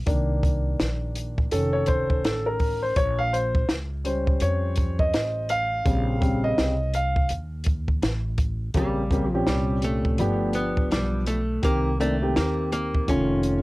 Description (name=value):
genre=hip hop, jazz-hop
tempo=83 BPM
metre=4/4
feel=swing 61% on 16ths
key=Bb dorian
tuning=A4 = 440 Hz
part: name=upright bass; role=bass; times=0.0-13.6 s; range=F1 to F2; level=-27 LUFS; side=equal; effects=none
part: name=dark grand piano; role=accompaniment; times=0.1-13.6 s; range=Bb2 to F5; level=-25 LUFS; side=equal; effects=cassette tape
part: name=compact cocktail drum kit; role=drums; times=0.1-13.6 s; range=hi-hat, kick drum, snare drum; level=-25 LUFS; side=equal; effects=cassette tape
part: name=archtop guitar, miked and amplified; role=melody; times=8.8-13.6 s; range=G3 to Db4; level=-28 LUFS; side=equal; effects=none
room=light reverb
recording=home recording on cassette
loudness=-22 LUFS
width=side -20 dB against mid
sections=0.0-8.7 A section; 8.7-13.6 B section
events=grand piano solo 0.0-8.7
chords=0.1 Cm7; 1.5 F7b13; 3.0 Bbm69; 10.2 G7; 11.6 Cm7; 13.1 F7b13